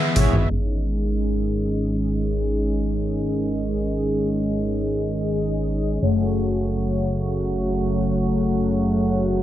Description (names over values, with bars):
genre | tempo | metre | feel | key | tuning
synthwave | 87 BPM | 4/4 | straight | unclear | A4 = 440 Hz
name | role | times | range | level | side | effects
warm analog pad | sustained chords | 0.0-9.4 s | C#3 to E5 | -23 LUFS | right 1 dB | chorus
mellow synth brass | stabs | 0.2-9.4 s | G#3 to D#5 | -27 LUFS | left 3 dB | chorus, phaser, digital delay
chorused synth bass | bass | 0.2-9.4 s | F#1 to G#1 | -25 LUFS | equal | none
pop drum kit | drums | 0.2-9.3 s | hi-hat, toms | -23 LUFS | equal | overdrive
room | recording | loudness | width
moderate scoring stage reverb, RT60 2.1 s | low-pass filter | -20 LUFS | side -12 dB against mid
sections
0.5-9.4 A section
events
drum fill 0.0-0.5; band accent 0.0; filter sweep 0.5-9.4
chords
0.0 E; 0.5 G#sus4; 6.0 F#m